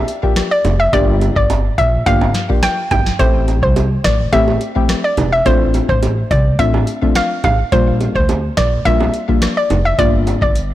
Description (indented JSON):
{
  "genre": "dancehall",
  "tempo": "106 BPM",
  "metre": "4/4",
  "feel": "straight",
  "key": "unclear",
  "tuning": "A4 = 440 Hz",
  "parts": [
    { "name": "hollow square pluck", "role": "melody", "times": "0.0-10.7 s", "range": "C5 to G5", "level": "-17 LUFS", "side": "right 1 dB", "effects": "chorus, digital delay" },
    { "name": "booming analog drum machine", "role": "drums", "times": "0.1-10.7 s", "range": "hi-hat, kick drum, rim click, snare drum", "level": "-18 LUFS", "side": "equal", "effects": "none" },
    { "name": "deep mellow chord stab", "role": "accompaniment", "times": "0.2-10.5 s", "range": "G3 to G4", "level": "-20 LUFS", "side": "left 6 dB", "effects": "chorus" },
    { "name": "upright bass", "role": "bass", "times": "0.6-10.7 s", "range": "E1 to D2", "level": "-17 LUFS", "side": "equal", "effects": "none" },
    { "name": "bongos", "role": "percussion", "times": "0.6-10.4 s", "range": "none", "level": "-23 LUFS", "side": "right 6 dB", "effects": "none" }
  ],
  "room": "little or no reverb",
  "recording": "blown-out, overdriven recording, overdrive",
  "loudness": "-12 LUFS",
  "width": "side -14 dB against mid",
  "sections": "0.0-10.7 A section",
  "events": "none",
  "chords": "0.0 Bb6; 0.9 Gm7; 3.2 Am7; 5.5 Dm7/A; 7.7 Bb6; 10.0 Gm7"
}